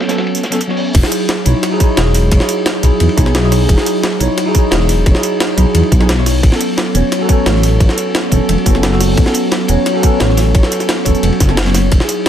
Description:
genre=liquid drum and bass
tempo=175 BPM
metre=4/4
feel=straight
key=E major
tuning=A4 = 440 Hz
part: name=bell-like tine electric piano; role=accompaniment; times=0.0-12.3 s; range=F#3 to C#5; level=-15 LUFS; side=equal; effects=phaser, tape echo
part: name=crunchy breakbeat drum kit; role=drums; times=0.0-12.3 s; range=hi-hat, ride cymbal, snare drum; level=-24 LUFS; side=equal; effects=high-pass filter on cymbals, low-pass filter on cymbals, high-pass filter on hats, low-pass filter on hats, high-pass filter on snare, low-pass filter on snare, high-pass filter on room, low-pass filter on room
part: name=jungle sampler-style drum kit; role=drums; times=0.1-12.3 s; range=crash cymbal, hi-hat, snare drum, tambourine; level=-19 LUFS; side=equal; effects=none
part: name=dark detuned saw bass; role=bass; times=0.9-12.0 s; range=E1 to E2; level=-13 LUFS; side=equal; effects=none
part: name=electronic kick drum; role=drums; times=0.9-12.0 s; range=none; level=-12 LUFS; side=equal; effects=none
room=light reverb, studio reverb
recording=none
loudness=-10 LUFS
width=side -10 dB against mid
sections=0.9-12.3 A section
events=drop 0.9-12.3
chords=0.0 A69; 0.9 Emaj9; 6.4 A69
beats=0.26 0.60 | 0.95 1.29 1.63 1.98 | 2.32 2.66 3.00 3.35 | 3.69 4.03 4.38 4.72 | 5.06 5.40 5.75 6.09 | 6.43 6.78 7.12 7.46 | 7.80 8.15 8.49 8.83 | 9.18 9.52 9.86 10.20 | 10.55 10.89 11.23 11.57 | 11.92 12.26

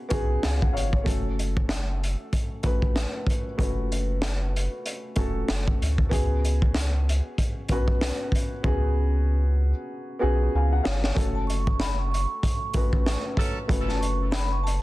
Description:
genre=hip hop, boom-bap hip-hop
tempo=95 BPM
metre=4/4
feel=swing 59% on 16ths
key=F# minor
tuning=A4 = 440 Hz
part: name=dark upright piano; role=accompaniment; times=0.0-14.8 s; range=A3 to G#5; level=-31 LUFS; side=left 1 dB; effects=high-pass filter, low-pass filter, plate reverb
part: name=soft dub sub bass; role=bass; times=0.1-14.8 s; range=E1 to D2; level=-25 LUFS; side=equal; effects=none
part: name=crunchy breakbeat drum kit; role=drums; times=0.1-14.8 s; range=hi-hat, kick drum, snare drum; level=-26 LUFS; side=equal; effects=none
part: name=vibraphone with medium mallets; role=melody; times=11.3-14.8 s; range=A5 to C#6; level=-32 LUFS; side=right 1 dB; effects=high-pass filter, low-pass filter, plate reverb, tape echo
part: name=clear saxophone section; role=stabs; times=13.4-13.6 s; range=F#3 to A4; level=-35 LUFS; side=right 3 dB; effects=high-pass filter, low-pass filter, plate reverb, tape echo
room=little or no reverb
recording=dense, heavily limited modern master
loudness=-23 LUFS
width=side -18 dB against mid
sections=0.0-11.2 A section; 11.2-14.8 B section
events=drum fill 8.6-11.2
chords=0.0 C#7sus4; 1.1 F#m; 6.1 C#7sus4; 11.2 F#m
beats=0.43 | 1.06 1.70 2.33 2.96 | 3.59 4.22 4.85 5.48 | 6.12 6.75 7.38 8.01 | 8.64 9.27 9.90 10.54 | 11.17 11.80 12.43 13.06 | 13.70 14.33

